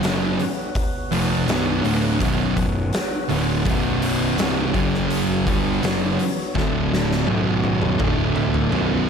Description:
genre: stoner and doom metal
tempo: 83 BPM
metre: 4/4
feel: straight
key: B minor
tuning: A4 = 440 Hz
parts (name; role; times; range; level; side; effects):
- percussive tonewheel organ; sustained chords; 0.0-9.1 s; F#3 to F#5; -31 LUFS; equal; slow rotary speaker
- thick fuzz guitar; riff; 0.0-9.1 s; B1 to G3; -24 LUFS; left 10 dB; distortion
- thick fuzz guitar; riff; 0.0-9.1 s; B1 to G3; -23 LUFS; right 9 dB; distortion
- fuzz picked electric bass; bass; 0.0-9.1 s; B0 to G1; -27 LUFS; equal; overdrive
- oversized low-tuned drum kit; drums; 0.0-8.9 s; hi-hat, kick drum, snare drum, toms; -25 LUFS; equal; none
room: moderate large studio reverb, RT60 1.1 s, studio ambience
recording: none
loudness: -18 LUFS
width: side -6 dB against mid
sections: 0.0-9.1 A section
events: drum fill 6.6-9.1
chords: 0.0 Bm; 4.7 F#5; 5.5 Bm; 6.6 D5; 7.3 B5; 8.0 D5

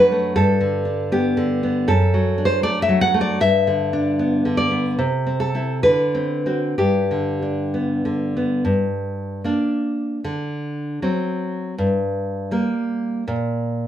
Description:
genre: romantic piece for solo classical guitar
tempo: 61-84 BPM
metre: 2/4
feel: rubato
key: G major, G minor from 8.6 s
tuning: A4 = 440 Hz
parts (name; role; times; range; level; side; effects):
- nylon-string guitar; solo; 0.0-13.9 s; F#2 to F#5; -18 LUFS; equal; slapback echo
room: wet studio reverb, RT60 0.6 s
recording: heard from further back in the room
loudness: -18 LUFS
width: side -10 dB against mid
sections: 0.0-8.6 A section; 8.6-13.9 B section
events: none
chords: 0.4 G; 1.9 D/F#; 3.4 G; 5.0 C; 5.8 D6; 6.8 G; 8.6 Gm; 10.2 D7; 11.8 Gm; 13.3 N.C.

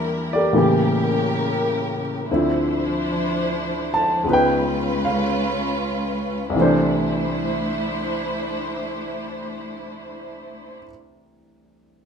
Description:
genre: jazz ballad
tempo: 47-73 BPM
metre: 4/4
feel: swing 67% on 8ths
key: C major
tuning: A4 = 440 Hz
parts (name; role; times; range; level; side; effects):
- clear baby grand piano; accompaniment; 0.0-12.1 s; C2 to A5; -20 LUFS; equal; none
- warm studio string section; sustained chords; 0.0-10.8 s; C#3 to C5; -25 LUFS; equal; none
room: moderate large studio reverb, RT60 0.8 s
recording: minimal, uncompressed stereo recording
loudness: -19 LUFS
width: side -6 dB against mid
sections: 0.0-2.3 A section; 2.3-6.5 B section; 6.5-11.7 C section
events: slowing down 0.0-6.5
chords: 0.0 Em7b5; 0.5 A7b9; 2.3 Dm9; 4.2 Db7; 6.5 C69

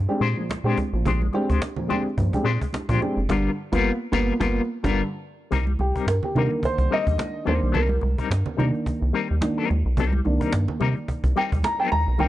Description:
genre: funk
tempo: 108 BPM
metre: 4/4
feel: swing 56% on 16ths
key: C minor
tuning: A4 = 440 Hz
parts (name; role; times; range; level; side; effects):
- rubbery square bass; bass; 0.0-12.3 s; F#1 to C3; -22 LUFS; equal; none
- electric guitar with an envelope filter; accompaniment; 0.1-12.3 s; G3 to C5; -28 LUFS; left 7 dB; tremolo
- dark upright piano; stabs; 0.1-12.3 s; G2 to Bb5; -25 LUFS; right 1 dB; none
- cajon; drums; 0.1-12.3 s; none; -29 LUFS; equal; none
- congas; percussion; 0.2-12.3 s; none; -33 LUFS; right 4 dB; none
room: small room ambience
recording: nothing above 10.3 kHz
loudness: -21 LUFS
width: side -14 dB against mid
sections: 0.0-5.5 A section; 5.5-12.3 B section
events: band accent 3.3-5.5; upright piano solo 5.5-12.3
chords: 0.0 Bb13; 3.3 G7#9; 5.5 Cm7

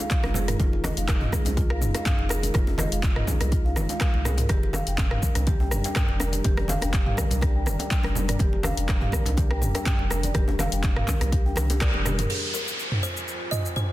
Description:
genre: afro house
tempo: 123 BPM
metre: 4/4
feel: swing 53% on 16ths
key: F dorian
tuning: A4 = 441 Hz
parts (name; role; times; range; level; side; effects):
- dark analog pad; sustained chords; 0.0-13.9 s; G3 to Ab5; -35 LUFS; left 1 dB; chorus, vintage 12-bit sampler grit, sidechain pumping
- marimba with medium mallets; arpeggios; 0.0-12.3 s; F4 to G5; -34 LUFS; equal; sidechain pumping, tape echo
- house drum kit; drums; 0.0-13.9 s; crash cymbal, handclaps, hi-hat, rim click, shaker, toms; -29 LUFS; equal; none
- djembe; percussion; 0.0-12.2 s; none; -36 LUFS; left 1 dB; none
- electronic kick drum; drums; 0.1-11.9 s; none; -24 LUFS; equal; none
- warm sub bass; bass; 0.2-12.3 s; F1 to C2; -27 LUFS; equal; tube saturation, sidechain pumping
- congas; percussion; 0.2-12.3 s; none; -34 LUFS; right 2 dB; none
- kalimba; melody; 12.3-13.9 s; Ab4 to Eb5; -33 LUFS; equal; tape echo
- downlifter; sound effects; 12.3-13.9 s; none; -30 LUFS; equal; none
room: light reverb, studio reverb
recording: dense, heavily limited modern master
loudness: -22 LUFS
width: side -16 dB against mid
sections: 0.0-12.3 A section; 12.3-13.9 B section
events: band accent 11.8; drum fill 11.9-12.3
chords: 0.0 Fm7; 4.5 Gm/F; 12.3 Fm

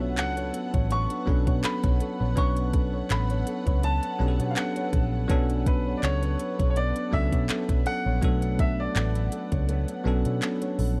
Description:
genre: contemporary R&B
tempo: 82 BPM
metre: 4/4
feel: swing 54% on 16ths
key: B minor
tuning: A4 = 440 Hz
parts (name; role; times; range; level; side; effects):
- clear baby grand piano; melody; 0.0-9.9 s; B4 to C#6; -36 LUFS; equal; delay
- bell-like tine electric piano; accompaniment; 0.0-11.0 s; F#3 to B4; -33 LUFS; equal; none
- dark studio string section; sustained chords; 0.0-11.0 s; B3 to F#5; -40 LUFS; equal; sidechain pumping
- flamenco guitar; arpeggios; 0.0-11.0 s; B3 to C#5; -39 LUFS; equal; delay
- vintage muted picked electric bass; bass; 0.0-11.0 s; A1 to B2; -29 LUFS; equal; none
- smooth R&B drum kit; drums; 0.2-11.0 s; handclaps, hi-hat, kick drum; -29 LUFS; equal; none
room: little or no reverb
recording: dark, warm production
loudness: -26 LUFS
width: mono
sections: 0.0-11.0 A section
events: kick muted 9.7-11.0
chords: 0.0 Bm9

